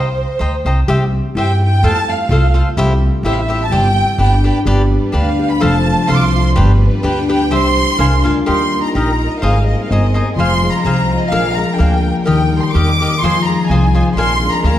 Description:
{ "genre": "mexican folk, mariachi", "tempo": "126 BPM", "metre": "2/4", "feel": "straight", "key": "C major, Eb major from 8.5 s", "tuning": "A4 = 440 Hz", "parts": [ { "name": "warm studio violin section", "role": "melody", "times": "0.0-14.8 s", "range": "C5 to D6", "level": "-18 LUFS", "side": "right 2 dB", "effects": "none" }, { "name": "cavaquinho", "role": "accompaniment", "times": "0.0-14.8 s", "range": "D4 to Bb5", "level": "-22 LUFS", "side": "left 2 dB", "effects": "none" }, { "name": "upright bass", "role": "bass", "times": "0.0-14.8 s", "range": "F1 to G2", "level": "-15 LUFS", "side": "equal", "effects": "none" }, { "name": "concert harp", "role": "arpeggios", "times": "0.9-14.8 s", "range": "Eb3 to A4", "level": "-18 LUFS", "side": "left 3 dB", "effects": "none" }, { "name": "warm symphonic violin section", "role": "sustained chords", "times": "4.7-14.8 s", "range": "G3 to C5", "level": "-26 LUFS", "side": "equal", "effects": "none" } ], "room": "moderate recital hall reverb, RT60 1.5 s", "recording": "dark, warm production", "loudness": "-12 LUFS", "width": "side -12 dB against mid", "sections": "0.9-8.5 A section; 8.5-14.8 B section", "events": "none", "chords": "0.0 Cm7; 0.9 C; 1.8 F; 2.8 C; 3.7 Gsus4; 4.2 G; 5.6 F; 6.6 G; 7.5 C; 8.0 Bb7; 8.5 Eb; 9.4 Abadd9; 10.4 Fm; 11.3 Bb7; 12.3 Eb; 13.2 Fm7; 14.2 Bb7" }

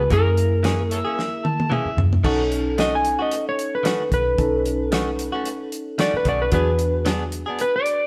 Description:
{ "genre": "straight-eighth soul blues", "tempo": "112 BPM", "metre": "4/4", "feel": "swing 55% on 16ths", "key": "B mixolydian", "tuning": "A4 = 439 Hz", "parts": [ { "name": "clean lap steel guitar", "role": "melody", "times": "0.0-8.1 s", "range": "A#4 to G#5", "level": "-25 LUFS", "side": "equal", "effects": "none" }, { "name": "barky tine electric piano", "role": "accompaniment", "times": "0.0-8.1 s", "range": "A#3 to A4", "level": "-30 LUFS", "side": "equal", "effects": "phaser" }, { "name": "direct-recorded clean electric guitar", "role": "stabs", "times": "0.0-7.6 s", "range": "D#3 to G#4", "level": "-31 LUFS", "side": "equal", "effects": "none" }, { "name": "vintage muted fingered electric bass", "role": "bass", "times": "0.0-7.4 s", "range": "B1 to F#2", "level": "-25 LUFS", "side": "equal", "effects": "none" }, { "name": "warm soul drum kit", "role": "drums", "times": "0.1-8.0 s", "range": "crash cymbal, hi-hat, kick drum, snare drum, toms", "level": "-28 LUFS", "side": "equal", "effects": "none" }, { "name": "overdriven harmonica", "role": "second line", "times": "0.9-2.0 s", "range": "A4 to A5", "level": "-30 LUFS", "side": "equal", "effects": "none" } ], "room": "moderate stone room reverb, RT60 1.4 s", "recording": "band playing live in one room", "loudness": "-21 LUFS", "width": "mono", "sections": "0.0-2.2 A section; 2.2-8.1 B section", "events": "drum fill 1.2-2.2; electric slide guitar solo 2.2-8.1", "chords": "0.1 F#9; 2.2 B9; 6.5 E9" }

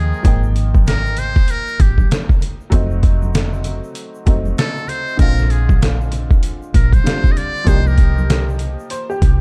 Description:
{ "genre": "hip hop, jazz-hop", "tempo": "97 BPM", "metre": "4/4", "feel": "swing 62% on 16ths", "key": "unclear", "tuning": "A4 = 441 Hz", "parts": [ { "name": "trumpet with metal mute", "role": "melody", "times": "0.0-8.5 s", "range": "G4 to Eb5", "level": "-26 LUFS", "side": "equal", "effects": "none" }, { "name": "bright upright piano", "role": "accompaniment", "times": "0.0-9.4 s", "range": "D3 to G5", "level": "-29 LUFS", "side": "equal", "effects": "none" }, { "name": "deep dub fingered electric bass", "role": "bass", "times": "0.0-9.4 s", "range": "F1 to Eb2", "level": "-20 LUFS", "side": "equal", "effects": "none" }, { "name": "egg shaker and congas", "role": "percussion", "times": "0.1-9.4 s", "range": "none", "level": "-33 LUFS", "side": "equal", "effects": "none" }, { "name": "trip hop sampler-style drum kit", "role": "drums", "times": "0.2-9.4 s", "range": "hi-hat, kick drum, snare drum", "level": "-17 LUFS", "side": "equal", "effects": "none" } ], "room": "small room ambience", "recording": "dark, warm production", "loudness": "-16 LUFS", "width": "mono", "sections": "0.0-9.4 A section", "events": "muted trumpet solo 0.0-9.4", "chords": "0.2 Absus2; 2.7 F7b9; 5.2 Bb7; 7.7 Cm7" }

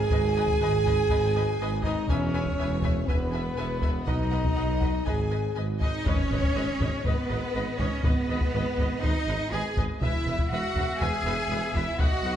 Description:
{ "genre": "cinematic, epic orchestral film score", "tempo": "121 BPM", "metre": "4/4", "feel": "straight", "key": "G# minor", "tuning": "A4 = 444 Hz", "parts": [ { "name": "warm symphonic violin section", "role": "second line", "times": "0.0-12.4 s", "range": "B4 to G#5", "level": "-36 LUFS", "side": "left 3 dB", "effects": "none" }, { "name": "mellow French horn section", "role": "sustained chords", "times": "0.0-12.4 s", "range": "F#3 to G#4", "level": "-32 LUFS", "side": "equal", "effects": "none" }, { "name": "warm trumpet", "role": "stabs", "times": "0.0-12.4 s", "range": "B3 to E5", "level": "-36 LUFS", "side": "equal", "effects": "none" }, { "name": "bright symphonic cello section", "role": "bass", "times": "0.0-12.4 s", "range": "E2 to G#4", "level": "-32 LUFS", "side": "right 2 dB", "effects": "none" }, { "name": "mellow tuba", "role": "bass", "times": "0.0-12.3 s", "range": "E1 to B1", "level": "-34 LUFS", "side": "right 2 dB", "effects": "none" }, { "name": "rich symphonic double bass section", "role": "bass", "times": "0.0-12.3 s", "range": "E1 to B1", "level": "-32 LUFS", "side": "right 2 dB", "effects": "none" }, { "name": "rich symphonic violin section", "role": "melody", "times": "0.1-12.4 s", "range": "B4 to G#5", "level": "-38 LUFS", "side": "left 1 dB", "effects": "none" }, { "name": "rich symphonic viola section", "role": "accompaniment", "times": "0.1-12.3 s", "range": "B4 to F#5", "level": "-38 LUFS", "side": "left 1 dB", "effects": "none" }, { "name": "taiko ensemble", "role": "drums", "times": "0.1-12.4 s", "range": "none", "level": "-29 LUFS", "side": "equal", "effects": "none" }, { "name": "impact", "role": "sound effects", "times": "6.1-8.0 s", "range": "none", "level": "-36 LUFS", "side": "left 1 dB", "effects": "none" } ], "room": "moderate scoring stage reverb, RT60 1.6 s", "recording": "nothing above 11.0 kHz", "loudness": "-24 LUFS", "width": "side -10 dB against mid", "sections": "0.0-6.1 A section; 6.1-12.4 B section", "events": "impact 6.1-8.0", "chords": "0.0 G#m; 2.1 E; 4.1 B; 5.1 G#m; 10.0 E" }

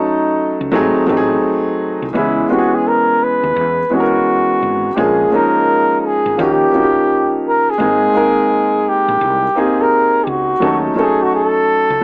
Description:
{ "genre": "hip hop, jazz-hop", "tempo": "85 BPM", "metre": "4/4", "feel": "swing 64% on 16ths", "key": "unclear", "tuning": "A4 = 441 Hz", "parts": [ { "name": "breathy flugelhorn", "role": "melody", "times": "0.0-12.0 s", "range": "Eb4 to Cb5", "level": "-17 LUFS", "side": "equal", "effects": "none" }, { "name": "dark grand piano", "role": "accompaniment", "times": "0.0-12.0 s", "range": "Fb3 to Bb4", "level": "-18 LUFS", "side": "equal", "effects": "none" }, { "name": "woody fretless electric bass", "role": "bass", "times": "0.6-12.0 s", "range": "Ab1 to Fb2", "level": "-28 LUFS", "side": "equal", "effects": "tube saturation" } ], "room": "little or no reverb", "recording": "dry, gritty hardware recording, small speaker sound", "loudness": "-15 LUFS", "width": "mono", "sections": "0.0-7.8 A section; 7.8-12.0 A section", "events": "none", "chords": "0.0 Ebm7b5; 0.7 Ab7b9; 2.1 Dbm7; 5.0 Bbm7; 6.4 Eb9; 7.8 Abmaj9; 10.6 Ebm7b5" }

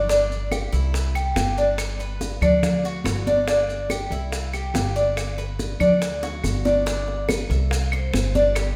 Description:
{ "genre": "latin, Cuban son and guajira", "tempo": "142 BPM", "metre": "4/4", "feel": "straight", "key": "G major", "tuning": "A4 = 440 Hz", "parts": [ { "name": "Cuban tres", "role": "arpeggios", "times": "0.0-8.8 s", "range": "D4 to E5", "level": "-26 LUFS", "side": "equal", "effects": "none" }, { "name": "upright bass", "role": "bass", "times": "0.0-8.8 s", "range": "G1 to D2", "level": "-28 LUFS", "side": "equal", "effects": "none" }, { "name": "bongos", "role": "percussion", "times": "0.1-8.8 s", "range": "none", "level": "-34 LUFS", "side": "equal", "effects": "none" }, { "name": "congas", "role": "percussion", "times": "0.1-8.8 s", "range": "none", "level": "-30 LUFS", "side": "equal", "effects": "none" }, { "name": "maracas", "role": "percussion", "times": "0.1-8.8 s", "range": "none", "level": "-38 LUFS", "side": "equal", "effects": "none" }, { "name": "claves", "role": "percussion", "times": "0.5-8.8 s", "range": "none", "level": "-37 LUFS", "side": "equal", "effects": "none" } ], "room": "moderate scoring stage reverb, RT60 1.5 s", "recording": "none", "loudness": "-22 LUFS", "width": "mono", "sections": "0.0-6.9 A section; 6.9-8.8 B section", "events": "drum fill 6.2-6.9", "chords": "0.1 G5; 1.8 G; 2.6 D; 3.5 G5; 5.2 G; 6.0 D; 6.9 G6; 7.7 C" }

